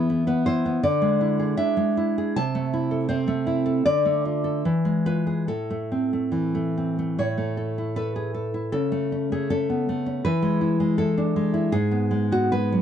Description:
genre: romantic piece for solo classical guitar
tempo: 69-84 BPM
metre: 2/4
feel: rubato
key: A minor, A major from 7.2 s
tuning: A4 = 440 Hz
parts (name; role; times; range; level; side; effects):
- nylon-string guitar; solo; 0.0-12.8 s; G#2 to A5; -21 LUFS; equal; none
room: moderate studio reverb, RT60 0.5 s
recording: dark, warm production, nothing above 10.6 kHz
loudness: -21 LUFS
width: side -9 dB against mid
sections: 0.0-7.2 A section; 7.2-12.8 B section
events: none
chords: 0.0 E5; 0.8 E7/D; 2.4 Am/C; 3.8 Dm; 4.6 E7b9; 5.5 Am; 7.2 A; 8.7 A/C#; 10.3 E; 11.7 G#m7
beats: 0.09 | 0.82 1.57 | 2.36 3.09 | 3.84 4.64 | 5.49 6.34 | 7.20 7.97 | 8.74 9.51 | 10.25 11.00 | 11.74 12.53

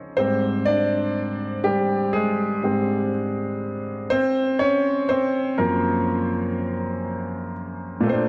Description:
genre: R&B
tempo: 61 BPM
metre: 4/4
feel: swing 58% on 16ths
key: unclear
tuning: A4 = 443 Hz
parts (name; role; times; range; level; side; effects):
- warm concert grand piano; solo; 0.0-8.3 s; Gb2 to D5; -23 LUFS; equal; none
room: light reverb, studio reverb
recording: lossy compression artefacts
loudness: -23 LUFS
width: mono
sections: 0.0-8.0 A section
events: grand piano solo 0.0-8.0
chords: 0.2 Abmaj7; 4.1 Gbmaj7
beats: | 0.18 1.16 2.15 3.13 | 4.11 5.10 6.08 7.07 | 8.05

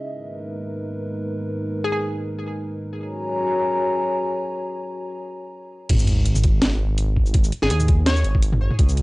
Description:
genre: half-time drum and bass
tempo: 166 BPM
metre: 4/4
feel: swing 55% on 16ths, half-time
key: G# minor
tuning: A4 = 439 Hz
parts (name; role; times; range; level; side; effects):
- dark analog pad; sustained chords; 0.0-5.2 s; G#3 to A#5; -24 LUFS; left 1 dB; chorus, sidechain pumping
- hollow square pluck; melody; 1.8-2.0, 7.6-8.3 s; G#4 to C#5; -27 LUFS; left 1 dB; chorus, tape echo
- dark detuned saw bass; bass; 5.9-9.0 s; G#1 to D#2; -20 LUFS; equal; none
- drum and bass drum kit; drums; 5.9-9.0 s; crash cymbal, hi-hat, shaker, snare drum, toms; -24 LUFS; equal; overdrive, small room ambience
- electronic kick drum; drums; 5.9-8.9 s; none; -18 LUFS; equal; small room ambience
- sub drop; sound effects; 5.9-7.3 s; none; -26 LUFS; equal; none
room: light reverb, digital ambience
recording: dry, gritty hardware recording, cassette tape, nothing above 10.5 kHz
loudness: -19 LUFS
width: side -22 dB against mid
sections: 0.0-5.9 A section; 5.9-9.0 B section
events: filter sweep on analog synth pad 0.0-5.9; break 5.2-5.9; drop 5.9-9.0; impact 5.9-7.3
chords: 0.1 G#m; 3.0 F#; 5.9 G#5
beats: | 0.11 0.48 0.84 1.20 | 1.56 1.92 2.28 2.64 | 3.01 3.37 3.73 4.09 | 4.45 4.81 5.17 5.54 | 5.90 6.26 6.62 6.98 | 7.34 7.70 8.07 8.43 | 8.79

